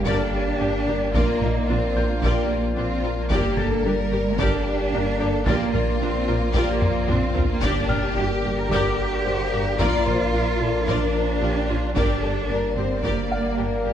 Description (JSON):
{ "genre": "cinematic, hybrid orchestral and electronic film score", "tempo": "111 BPM", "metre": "4/4", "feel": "straight", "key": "G minor", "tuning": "A4 = 440 Hz", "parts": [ { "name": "bright trombone section", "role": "sustained chords", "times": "0.0-13.9 s", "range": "D3 to Bb3", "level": "-32 LUFS", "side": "right 3 dB", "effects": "none" }, { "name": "hollow soft pad", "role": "sustained chords", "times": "0.0-13.9 s", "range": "Bb3 to D5", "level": "-33 LUFS", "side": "equal", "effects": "none" }, { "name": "mellow French horn section", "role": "sustained chords", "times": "0.0-13.9 s", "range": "Bb4 to D5", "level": "-31 LUFS", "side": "left 3 dB", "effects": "none" }, { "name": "pure sine sub bass", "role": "bass", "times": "0.0-13.9 s", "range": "G1 to Bb1", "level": "-28 LUFS", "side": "equal", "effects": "none" }, { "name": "warm symphonic cello section", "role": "bass", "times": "0.0-13.9 s", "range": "G3 to Bb4", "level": "-27 LUFS", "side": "right 2 dB", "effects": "none" }, { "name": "impact", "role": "sound effects", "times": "0.0-1.1 s", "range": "none", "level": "barely audible", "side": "none", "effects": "none" }, { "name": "felt-muted upright piano", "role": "texture", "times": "0.0-13.9 s", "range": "C5 to A6", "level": "-35 LUFS", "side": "left 4 dB", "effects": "digital delay" }, { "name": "warm symphonic violin section", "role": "melody", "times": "0.1-13.9 s", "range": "F4 to D5", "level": "-34 LUFS", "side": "left 4 dB", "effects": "none" }, { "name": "warm symphonic violin section", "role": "second line", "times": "0.1-13.9 s", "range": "Eb4 to D5", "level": "-29 LUFS", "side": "left 3 dB", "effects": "none" }, { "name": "rich symphonic viola section", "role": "accompaniment", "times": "0.1-13.9 s", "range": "D4 to Bb4", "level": "-30 LUFS", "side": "right 1 dB", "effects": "none" }, { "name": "rich symphonic double bass section", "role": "bass", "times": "0.1-13.9 s", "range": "G1 to Bb1", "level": "-29 LUFS", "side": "right 3 dB", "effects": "none" }, { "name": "taiko ensemble", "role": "drums", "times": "0.1-13.5 s", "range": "none", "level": "-28 LUFS", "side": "equal", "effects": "none" } ], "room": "moderate concert hall reverb, RT60 2.0 s", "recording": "dark, warm production", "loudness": "-20 LUFS", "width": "side -10 dB against mid", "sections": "0.0-13.9 A section", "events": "impact 0.0-1.1; drum fill 6.8-7.6", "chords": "0.0 Gm; 1.1 Bb; 3.3 Gm; 5.5 Bb; 7.6 Gm; 9.8 Bb; 12.0 Gm", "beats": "0.06 0.60 | 1.14 1.68 2.22 2.76 | 3.30 3.84 4.38 4.92 | 5.46 6.01 6.55 7.09 | 7.63 8.17 8.71 9.25 | 9.79 10.33 10.87 11.41 | 11.95 12.49 13.03 13.57" }